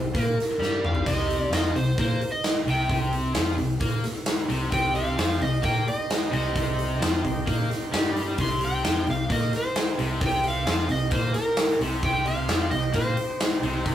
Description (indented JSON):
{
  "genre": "blues rock power trio and southern rock",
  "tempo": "131 BPM",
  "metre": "4/4",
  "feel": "straight",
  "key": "C minor",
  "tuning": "A4 = 436 Hz",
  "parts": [
    { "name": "overdriven slide guitar", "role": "melody", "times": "0.0-13.9 s", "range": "Bb4 to C6", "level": "-28 LUFS", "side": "right 1 dB", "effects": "none" },
    { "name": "overdriven electric guitar", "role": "riff", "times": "0.0-13.9 s", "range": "C3 to Bb3", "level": "-29 LUFS", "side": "left 1 dB", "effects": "none" },
    { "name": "fingered electric bass", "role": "bass", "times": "0.0-13.9 s", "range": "C2 to Bb2", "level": "-29 LUFS", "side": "equal", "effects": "none" },
    { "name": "big rock drum kit", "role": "drums", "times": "0.1-13.9 s", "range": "hi-hat, kick drum, snare drum, splash cymbal, toms", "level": "-26 LUFS", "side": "equal", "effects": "none" },
    { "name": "overdriven tonewheel organ", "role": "sustained chords", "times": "4.7-13.9 s", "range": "C4 to Db5", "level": "-38 LUFS", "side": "equal", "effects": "none" }
  ],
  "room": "moderate studio reverb, RT60 0.5 s",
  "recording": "rough rehearsal-room recording",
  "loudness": "-22 LUFS",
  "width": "side -11 dB against mid",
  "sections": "0.0-13.9 A section",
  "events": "drum fill 0.6-1.1",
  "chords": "0.0 Cm"
}